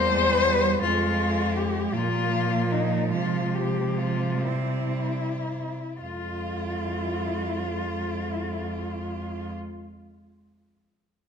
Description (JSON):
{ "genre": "classical, lyrical piece for cello ensemble", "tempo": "35-56 BPM (dotted quarters)", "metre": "6/8", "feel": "rubato", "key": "F minor", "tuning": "A4 = 440 Hz", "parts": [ { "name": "warm cello", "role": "melody", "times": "0.0-9.5 s", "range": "Eb4 to C5", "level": "-27 LUFS", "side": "left 5 dB", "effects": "none" }, { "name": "clear cello", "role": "second line", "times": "0.0-9.5 s", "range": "F3 to F4", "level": "-32 LUFS", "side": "right 8 dB", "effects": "none" }, { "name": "rich cello", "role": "accompaniment", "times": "0.0-9.5 s", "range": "G3 to Bb3", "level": "-33 LUFS", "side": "left 2 dB", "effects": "none" }, { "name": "warm cello", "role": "bass", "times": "0.0-9.5 s", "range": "E2 to C3", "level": "-30 LUFS", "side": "right 2 dB", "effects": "none" } ], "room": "wet recital hall reverb, RT60 1.8 s", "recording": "none", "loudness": "-24 LUFS", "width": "side -7 dB against mid", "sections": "0.0-6.0 A section; 6.0-9.0 B section", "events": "slowing down 0.0-6.0", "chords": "0.0 C/E; 0.8 Fm; 1.9 Bb5; 3.1 Fm/C; 4.5 C; 6.0 Fm", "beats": "| 0.83 1.94 | 3.11 4.45 | 6.03 7.53" }